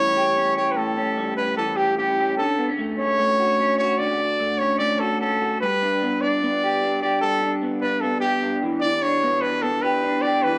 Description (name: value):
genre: indie pop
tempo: 149 BPM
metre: 4/4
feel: straight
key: D major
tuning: A4 = 440 Hz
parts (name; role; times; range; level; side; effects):
- clear trumpet; melody; 0.0-10.6 s; G4 to D5; -24 LUFS; equal; none
- electric guitar through a small old amp; arpeggios; 0.0-10.6 s; A2 to G4; -26 LUFS; equal; analog chorus
room: wet small room reverb, RT60 0.5 s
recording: dark, warm production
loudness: -22 LUFS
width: mono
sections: 0.0-10.6 A section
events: none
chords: 0.0 A7; 2.4 Dmaj7; 5.6 G; 8.6 Em7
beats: 0.37 | 0.77 1.18 1.58 1.98 | 2.39 2.79 3.20 3.60 | 4.00 4.41 4.81 5.21 | 5.62 6.02 6.42 6.82 | 7.22 7.63 8.03 8.43 | 8.83 9.23 9.63 10.04 | 10.44